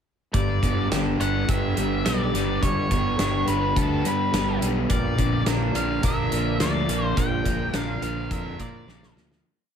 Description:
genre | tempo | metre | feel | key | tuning
rock, shoegaze and dream pop | 105 BPM | 4/4 | straight | unclear | A4 = 436 Hz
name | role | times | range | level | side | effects
octave-fuzz lead guitar | melody | 0.3-9.1 s | A4 to G5 | -29 LUFS | left 1 dB | distortion, slapback echo
deep dark ambient pad | sustained chords | 1.5-9.4 s | D4 to C6 | -34 LUFS | right 1 dB | chorus, built-in reverb
electric guitar through a small old amp | arpeggios | 0.3-9.4 s | F3 to D4 | -34 LUFS | left 1 dB | lush chorus, slapback echo
overdriven semi-hollow guitar | riff | 0.3-9.4 s | G2 to B3 | -30 LUFS | left 11 dB | wide subtle chorus
overdriven semi-hollow guitar | riff | 0.3-9.5 s | G2 to Bb4 | -29 LUFS | right 8 dB | reverse reverb
fuzz fingered electric bass | bass | 0.3-9.4 s | G1 to Bb2 | -28 LUFS | equal | overdrive
loose indie drum kit | drums | 0.3-9.4 s | hi-hat, kick drum, snare drum | -27 LUFS | equal | none
room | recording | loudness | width
small room ambience | none | -21 LUFS | side -8 dB against mid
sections
0.3-9.5 verse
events
fade-out 7.2-9.5; drum fill 8.9-9.5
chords
0.3 G; 4.9 Bb

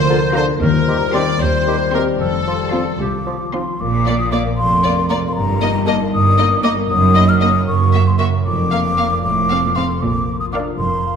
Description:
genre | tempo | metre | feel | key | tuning
cinematic, playful, whimsical film cue | 77 BPM (dotted quarters) | 6/8 | straight | Bb major | A4 = 440 Hz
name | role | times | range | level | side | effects
rich studio violin section | second line | 0.0-10.7 s | Eb4 to D5 | -26 LUFS | left 1 dB | none
warm oboe | second line | 0.0-3.0 s | A4 to D5 | -24 LUFS | equal | none
mellow French horn section | sustained chords | 0.0-3.5 s | F3 to C5 | -23 LUFS | left 8 dB | none
concert harp | arpeggios | 0.0-11.2 s | F2 to Eb6 | -22 LUFS | left 6 dB | none
rich studio cello section | bass | 0.0-11.2 s | C2 to Bb2 | -21 LUFS | right 4 dB | none
rich studio double bass section | bass | 0.0-11.2 s | F1 to Eb2 | -21 LUFS | right 4 dB | none
mellow hollow concert flute | second line | 0.1-11.2 s | A5 to F6 | -20 LUFS | left 2 dB | none
warm clarinet | second line | 0.1-3.7 s | Eb4 to G4 | -30 LUFS | left 2 dB | none
warm bassoon | accompaniment | 0.1-3.6 s | D3 to F3 | -27 LUFS | equal | none
warm studio violin section | melody | 0.3-10.7 s | D5 to C6 | -26 LUFS | left 4 dB | none
rich studio viola section | accompaniment | 0.4-10.7 s | Bb3 to G4 | -26 LUFS | right 2 dB | none
room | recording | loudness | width
wet scoring stage reverb, RT60 2.0 s | minimal, uncompressed stereo recording | -14 LUFS | side -6 dB against mid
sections
0.0-3.8 A section; 3.8-11.2 B section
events
none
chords
0.0 Bb/D; 0.6 Cm7/Eb; 2.2 F; 3.8 Bb; 5.4 Eb/G; 6.9 Ebm/Gb; 7.7 Gb7; 8.4 Bb/F; 9.2 F; 10.0 Bb

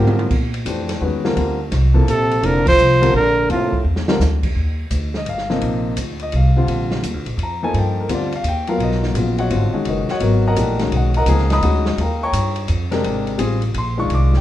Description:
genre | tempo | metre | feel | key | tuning
modal jazz | 170 BPM | 3/4 | swing 65% on 8ths | unclear | A4 = 440 Hz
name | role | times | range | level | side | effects
warm trumpet | melody | 0.0-3.8 s | F4 to C5 | -16 LUFS | right 1 dB | none
breathy trombone | second line | 0.0-3.8 s | A2 to F3 | -22 LUFS | right 2 dB | none
warm baby grand piano | accompaniment | 0.0-14.4 s | C3 to D#6 | -21 LUFS | left 2 dB | none
upright bass | bass | 0.0-14.4 s | F1 to Bb2 | -19 LUFS | equal | none
open jazz drum kit | drums | 0.1-14.4 s | crash cymbal, hi-hat, kick drum, ride cymbal, snare drum, toms | -26 LUFS | equal | none
room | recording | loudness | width
light reverb | minimal, uncompressed stereo recording | -16 LUFS | side -13 dB against mid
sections
0.0-4.6 A section; 4.6-13.0 B section; 13.0-14.4 B section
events
drum fill 0.0-0.3, 3.9-4.2; band accent 2.6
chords
0.3 Bbmaj9; 4.6 Ebmaj9; 8.8 Bmaj9; 12.0 Eb9; 13.0 Abmaj9

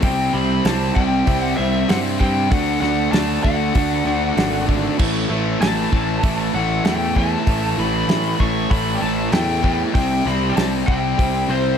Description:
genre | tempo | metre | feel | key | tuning
classic rock | 97 BPM | 4/4 | straight | unclear | A4 = 440 Hz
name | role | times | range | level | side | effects
lead guitar through a small cranked amp | melody | 0.0-11.8 s | C5 to C#6 | -24 LUFS | left 3 dB | overdrive
warm upright piano | accompaniment | 0.0-11.7 s | E4 to G5 | -32 LUFS | right 9 dB | none
overdriven tonewheel organ | sustained chords | 0.0-11.8 s | C4 to D5 | -35 LUFS | equal | none
crunchy overdriven guitar | riff | 0.0-11.8 s | A2 to D4 | -24 LUFS | right 13 dB | none
distorted electric guitar | riff | 0.0-11.8 s | A2 to D4 | -24 LUFS | left 12 dB | overdrive
fuzz picked electric bass | bass | 0.0-11.7 s | G#1 to G2 | -23 LUFS | equal | overdrive
damped 70s drum kit | drums | 0.0-11.3 s | crash cymbal, hi-hat, kick drum, snare drum | -22 LUFS | equal | none
room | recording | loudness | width
light reverb, small room ambience | none | -16 LUFS | side -8 dB against mid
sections
0.0-11.8 A section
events
none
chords
0.0 C; 2.5 D; 5.0 A; 9.9 C

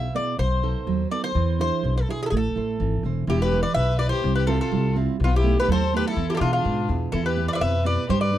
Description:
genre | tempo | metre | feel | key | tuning
greek folk, Greek bouzouki band | 124 BPM | 2/4 | straight | A harmonic minor | A4 = 445 Hz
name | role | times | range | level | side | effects
Greek bouzouki | melody | 0.0-8.4 s | F4 to E5 | -26 LUFS | left 1 dB | none
nylon-string guitar | accompaniment | 0.0-8.4 s | B2 to E5 | -27 LUFS | right 8 dB | none
upright bass | bass | 0.0-8.4 s | E1 to B2 | -24 LUFS | left 1 dB | none
clear violin | second line | 3.3-8.4 s | B3 to C5 | -30 LUFS | left 7 dB | slapback echo
room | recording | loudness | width
light reverb | dry, close 1970s-style studio recording | -20 LUFS | side -12 dB against mid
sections
0.0-3.3 A section; 3.3-8.4 B section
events
none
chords
0.4 B7; 1.4 E7; 2.3 Am; 3.3 Em; 4.2 C; 5.2 B7; 6.2 E; 7.1 Em

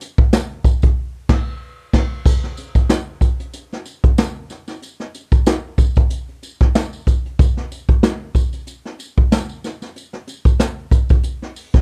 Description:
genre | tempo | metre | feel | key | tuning
funk | 93 BPM | 4/4 | swing 56% on 16ths | none | none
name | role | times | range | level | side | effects
jazz brush drum kit | drums | 0.0-11.8 s | crash cymbal, hi-hat, kick drum, snare drum | -17 LUFS | equal | none
tambourine | percussion | 0.0-11.7 s | none | -40 LUFS | equal | none
room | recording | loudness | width
little or no reverb | none | -18 LUFS | mono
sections
0.0-2.3 A section; 2.3-11.8 B section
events
band accent 1.0-2.3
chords
none

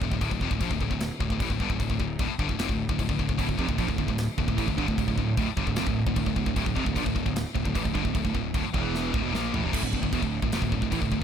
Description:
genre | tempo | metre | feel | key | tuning
heavy metal | 151 BPM | 4/4 | straight | D minor | A4 = 440 Hz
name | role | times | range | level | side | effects
fuzz guitar | riff | 0.0-11.2 s | D2 to Bb3 | -33 LUFS | equal | distortion
heavy high-gain guitar | riff | 0.0-11.2 s | D2 to Bb3 | -31 LUFS | left 11 dB | distortion
fuzz picked electric bass | bass | 0.0-11.2 s | D1 to Bb1 | -32 LUFS | equal | overdrive
modern studio drum kit | drums | 0.0-11.2 s | crash cymbal, kick drum, snare drum, toms | -30 LUFS | equal | none
sludgy distorted guitar | riff | 3.4-11.2 s | D2 to Bb3 | -31 LUFS | right 13 dB | overdrive
room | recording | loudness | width
small room ambience | none | -25 LUFS | side -8 dB against mid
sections
0.0-9.7 A section; 9.7-11.2 B section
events
drum fill 8.9-9.7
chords
0.0 Dm; 8.7 E5; 9.1 Dm

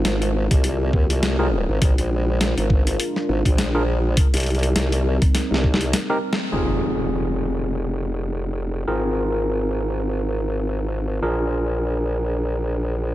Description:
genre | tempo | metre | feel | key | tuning
glitch hop | 102 BPM | 4/4 | swing 56% on 16ths | F dorian | A4 = 440 Hz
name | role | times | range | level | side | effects
dark analog pad | sustained chords | 0.0-13.1 s | G3 to D6 | -28 LUFS | equal | chorus, sidechain pumping
formant-sweep wobble bass | bass | 0.0-13.1 s | F1 to Eb2 | -22 LUFS | equal | chorus, overdrive
boom bap sampler-style drum kit | drums | 0.0-6.5 s | hi-hat, snare drum | -25 LUFS | left 1 dB | low-pass filter on hats, low-pass filter on snare
electronic kick drum | drums | 0.5-5.8 s | none | -18 LUFS | equal | none
overdriven tine electric piano | stabs | 1.4-13.1 s | C4 to Bb4 | -25 LUFS | equal | sidechain pumping, ping-pong delay
impact | sound effects | 6.5-8.9 s | none | -29 LUFS | equal | none
room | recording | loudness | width
digital ambience | none | -19 LUFS | side -14 dB against mid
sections
0.0-6.5 A section; 6.5-13.1 B section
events
drum fill 5.3-6.5; break 5.9-6.5; band accent 6.3; impact 6.5-8.9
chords
0.0 Ab69; 1.8 Bb7; 4.2 Cm7; 6.5 Fm7; 8.9 Ab69; 11.2 Bb7

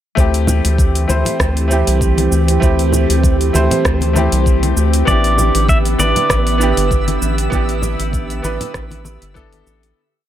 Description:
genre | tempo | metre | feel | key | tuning
sunset chillout | 98 BPM | 4/4 | swing 55% on 16ths | unclear | A4 = 440 Hz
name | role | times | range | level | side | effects
bright concert grand piano | accompaniment | 0.2-10.0 s | A3 to C5 | -20 LUFS | moving between left 7 dB and right 7 dB | auto-pan, tape echo
soft string machine | sustained chords | 0.6-9.9 s | D3 to G4 | -20 LUFS | right 1 dB | ensemble chorus
round analog bass | bass | 0.2-9.9 s | G1 to D2 | -16 LUFS | equal | none
electronic kick drum | drums | 0.2-9.5 s | none | -16 LUFS | equal | none
smooth R&B drum kit | drums | 0.2-9.9 s | cabasa, hi-hat, rim click | -22 LUFS | equal | none
congas | percussion | 0.5-9.6 s | none | -23 LUFS | left 2 dB | none
pedal steel guitar | melody | 5.1-9.3 s | D5 to E5 | -19 LUFS | equal | digital delay
twinkling granular texture | texture | 5.6-10.0 s | E5 to E6 | -31 LUFS | equal | built-in reverb
room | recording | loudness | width
light reverb | none | -12 LUFS | side -11 dB against mid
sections
0.2-10.0 groove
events
fade-out 6.7-10.0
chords
0.2 D9sus4; 5.1 A9sus4

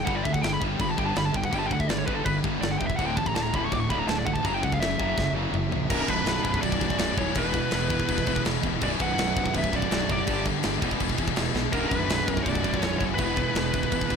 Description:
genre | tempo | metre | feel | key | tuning
heavy metal | 164 BPM | 4/4 | straight | B minor from 5.9 s | A4 = 440 Hz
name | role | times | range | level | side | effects
nasal lead guitar with a parked wah | melody | 0.0-14.2 s | A4 to D6 | -30 LUFS | equal | overdrive, ping-pong delay
heavy high-gain guitar | riff | 0.0-14.2 s | B1 to G3 | -31 LUFS | right 10 dB | distortion
high-gain distorted guitar | riff | 0.0-14.2 s | B1 to G3 | -33 LUFS | left 13 dB | distortion
high-gain distorted guitar | riff | 0.0-14.2 s | B1 to G3 | -33 LUFS | equal | distortion
fuzz fingered electric bass | bass | 0.0-14.2 s | B0 to D2 | -32 LUFS | left 1 dB | overdrive
tight metal drum kit | drums | 0.1-14.2 s | crash cymbal, kick drum, snare drum, toms | -29 LUFS | left 1 dB | none
high-gain lead guitar | second line | 5.9-14.2 s | C#4 to B4 | -37 LUFS | right 1 dB | distortion, ping-pong delay
room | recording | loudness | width
small room ambience | none | -23 LUFS | side -6 dB against mid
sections
0.0-5.9 A section; 5.9-14.2 B section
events
lead electric guitar solo 0.0-5.9; drum fill 5.2-5.9, 11.6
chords
0.1 G5; 3.0 D5; 4.4 F#7; 5.9 Bm; 7.4 E5; 8.8 Bm; 10.3 G5; 10.8 E5; 11.7 Bm; 13.2 E5

